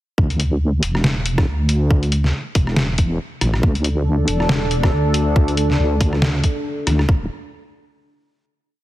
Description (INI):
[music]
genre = deep dubstep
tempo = 139 BPM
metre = 4/4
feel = swing 57% on 16ths, half-time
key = unclear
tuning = A4 = 438 Hz
[part]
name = deep soft wobble bass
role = bass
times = 0.2-7.3 s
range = D1 to D2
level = -18 LUFS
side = equal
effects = chorus
[part]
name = electronic kick drum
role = drums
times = 0.2-7.2 s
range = none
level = -18 LUFS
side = equal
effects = none
[part]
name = trip hop sampler-style drum kit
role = drums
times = 0.3-7.1 s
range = hi-hat, rim click, snare drum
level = -22 LUFS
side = equal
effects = none
[part]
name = dark analog pad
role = sustained chords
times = 3.9-7.1 s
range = D4 to A4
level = -23 LUFS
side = left 1 dB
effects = chorus
[sound]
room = little or no reverb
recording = heavily compressed radio sound, multiband compression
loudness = -16 LUFS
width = side -15 dB against mid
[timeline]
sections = 0.2-7.1 drop; 7.1-8.8 final note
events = drop 0.2-7.1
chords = 0.2 Dsus2; 7.1 N.C.